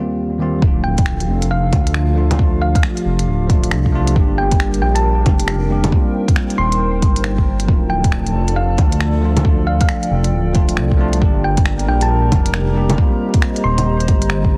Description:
future garage; 136 BPM; 4/4; swing 63% on 16ths; D phrygian; A4 = 443 Hz
bell-like tine electric piano; accompaniment; 0.0-14.6 s; Eb2 to G4; -25 LUFS; equal; sidechain pumping, analog delay
warbly tape-like pad; sustained chords; 0.0-14.6 s; Eb2 to Bb5; -28 LUFS; equal; chorus, built-in reverb, sidechain pumping
dark detuned saw bass; bass; 0.6-14.6 s; D1 to D2; -20 LUFS; equal; sidechain pumping
electronic kick drum; drums; 0.6-14.5 s; -17 LUFS; equal; vintage 12-bit sampler grit
thumb-piano-like synth pluck; melody; 0.8-14.1 s; F5 to C6; -26 LUFS; equal; chorus, analog delay
organic electronic drum kit; drums; 1.0-14.4 s; bongos, finger snaps, hi-hat; -25 LUFS; equal; low-pass filter on perc, vintage 12-bit sampler grit, low-pass filter on hats, soft clipping on snare, low-pass filter on snare
light reverb; dense, heavily limited modern master, vinyl crackle; -16 LUFS; mono
0.6-14.6 A section
0.0 Eb6; 0.6 Dm; 4.2 Gm; 5.9 Eb6; 7.7 Dm; 11.2 Gm; 13.0 Eb6
0.18 | 0.62 1.06 1.51 1.95 | 2.39 2.83 3.27 3.71 | 4.15 4.59 5.04 5.48 | 5.92 6.36 6.80 7.24 | 7.68 8.12 8.56 9.01 | 9.45 9.89 10.33 10.77 | 11.21 11.65 12.10 12.54 | 12.98 13.42 13.86 14.30

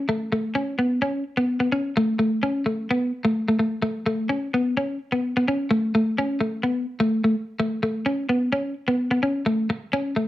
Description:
highlife; 128 BPM; 4/4; straight; A major; A4 = 441 Hz
clean electric guitar; solo; 0.0-10.3 s; A3 to C#4; -21 LUFS; equal; analog chorus
moderate studio reverb, RT60 0.7 s; -21 LUFS; side -15 dB against mid
0.0-10.3 A section
| 0.09 0.56 1.02 1.49 | 1.96 2.43 2.90 3.37 | 3.83 4.30 4.77 5.24 | 5.71 6.18 6.65 7.12 | 7.59 8.05 8.52 8.99 | 9.46 9.93

